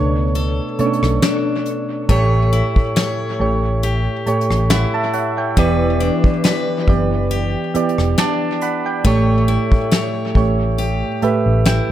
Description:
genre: contemporary R&B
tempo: 69 BPM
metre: 4/4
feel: swing 54% on 16ths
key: unclear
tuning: A4 = 443 Hz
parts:
  - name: soft electric-piano-like synth keys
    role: accompaniment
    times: 0.0-11.9 s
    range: A2 to D6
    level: -18 LUFS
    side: right 3 dB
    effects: chorus
  - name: picked steel-string acoustic guitar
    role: arpeggios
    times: 0.0-11.9 s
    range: E3 to C#5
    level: -23 LUFS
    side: left 8 dB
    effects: dub echo
  - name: vintage muted fingered electric bass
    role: bass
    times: 0.0-11.9 s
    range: E1 to C#2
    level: -18 LUFS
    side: equal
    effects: none
  - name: soft brush drum kit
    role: drums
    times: 0.3-11.9 s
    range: hi-hat, kick drum, rim click, snare drum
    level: -19 LUFS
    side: equal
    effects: dub echo
room: light reverb, small room reverb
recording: echo-heavy mix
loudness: -15 LUFS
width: side -12 dB against mid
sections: 0.0-11.9 A section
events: synth keys fill 10.8-11.9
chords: 0.0 Bm9; 2.1 A7; 5.6 Em7; 9.0 A7

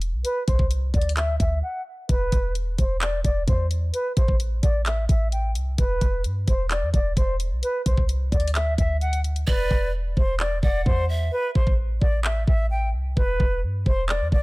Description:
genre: hip hop, trap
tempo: 130 BPM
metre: 4/4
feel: half-time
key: E minor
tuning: A4 = 440 Hz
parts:
  - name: clean 808-style bass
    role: bass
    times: 0.0-14.4 s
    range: E1 to G2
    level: -24 LUFS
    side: equal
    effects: none
  - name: trap drum kit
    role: drums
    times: 0.0-14.4 s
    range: handclaps, hi-hat, kick drum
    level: -23 LUFS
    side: equal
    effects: none
  - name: silver concert flute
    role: melody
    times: 0.2-14.4 s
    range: B4 to G5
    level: -28 LUFS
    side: equal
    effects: low-pass filter
  - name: breathy pan flute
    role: second line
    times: 9.5-11.3 s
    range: D5 to F#5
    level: -33 LUFS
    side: right 3 dB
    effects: tape echo
room: studio reverb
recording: none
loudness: -21 LUFS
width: side -22 dB against mid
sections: 0.0-14.4 A section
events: break 0.0, 1.6-2.1; filter sweep on flute 0.0-9.5; hi-hats muted 9.5-14.4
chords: 0.2 Cadd9; 2.1 E5; 3.9 A5; 5.8 E5; 7.6 Cadd9; 9.5 E5; 11.3 A5; 13.2 Em

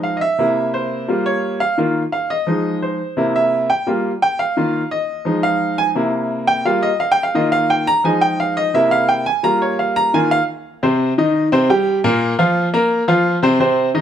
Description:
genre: latin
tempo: 173 BPM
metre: 4/4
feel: straight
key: unclear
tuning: A4 = 439 Hz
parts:
  - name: bright upright piano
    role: solo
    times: 0.0-14.0 s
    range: Bb2 to Bb5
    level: -15 LUFS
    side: equal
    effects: none
room: moderate large studio reverb, RT60 1.1 s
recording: none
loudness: -15 LUFS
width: side -9 dB against mid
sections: 0.0-10.8 A section; 10.8-14.0 B section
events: upright piano solo 0.0-10.8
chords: 0.4 C7; 1.1 Gm7b5; 1.8 Ebsus2; 2.5 Fm7; 3.2 C7; 3.9 Gm7; 4.6 Ebsus2; 5.3 Fm7; 6.0 C7; 6.7 Gm7; 7.4 Ebsus2; 8.0 Fm7; 8.7 C7; 9.4 Gm7b5; 10.1 Ebsus2; 10.8 Cm; 11.5 C5; 12.2 Bb5; 12.9 C7sus4

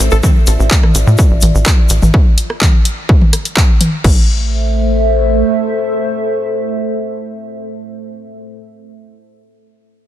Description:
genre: melodic techno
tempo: 126 BPM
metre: 4/4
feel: straight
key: A minor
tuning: A4 = 440 Hz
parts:
  - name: dark analog pad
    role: sustained chords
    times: 0.0-8.6 s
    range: A3 to E5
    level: -18 LUFS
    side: equal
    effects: chorus, phaser, sidechain pumping
  - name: tight sequencer bass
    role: bass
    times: 0.0-5.4 s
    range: A1 to A2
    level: -13 LUFS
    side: equal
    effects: sidechain pumping
  - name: tube shaker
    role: percussion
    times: 0.1-2.1 s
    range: none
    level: -23 LUFS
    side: left 4 dB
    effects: none
  - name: electronic kick drum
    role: drums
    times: 0.2-4.1 s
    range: none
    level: -10 LUFS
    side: equal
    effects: overdrive, studio reverb
  - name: techno drum kit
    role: drums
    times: 0.2-4.1 s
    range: crash cymbal, handclaps, hi-hat, rim click, toms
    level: -17 LUFS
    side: left 1 dB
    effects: overdrive, studio reverb
room: digital ambience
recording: dense, heavily limited modern master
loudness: -10 LUFS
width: side -12 dB against mid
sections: 0.0-4.0 A section; 4.0-7.9 B section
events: drop 0.0-4.0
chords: 0.2 Dmadd9/A; 2.1 N.C.; 4.0 Am

